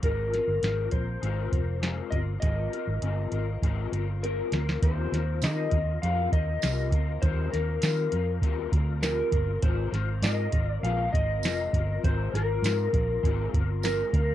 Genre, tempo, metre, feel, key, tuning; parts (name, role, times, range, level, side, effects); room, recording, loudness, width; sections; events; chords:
indie pop, bedroom pop; 100 BPM; 4/4; straight; Eb major; A4 = 440 Hz
clean lap steel guitar; melody; 0.0-14.3 s; Bb4 to F5; -31 LUFS; left 1 dB; lush chorus, cassette tape
electric guitar through a small old amp; accompaniment; 0.0-14.3 s; Eb3 to Bb4; -34 LUFS; left 10 dB; ensemble chorus, vibrato effect, cassette tape
vintage muted fingered electric bass; bass; 0.0-14.3 s; F1 to Eb3; -29 LUFS; right 1 dB
soft vintage rhythm box; drums; 0.0-14.3 s; hi-hat, kick drum, snare drum; -27 LUFS; right 1 dB; cassette tape
tambourine; percussion; 5.4-14.0 s; -40 LUFS; right 17 dB
light reverb; home recording on cassette; -25 LUFS; side -12 dB against mid
0.0-4.8 A section; 4.8-14.3 B section
drum fill 2.4-4.8
0.0 Ab69; 4.8 Eb69; 9.6 Ab69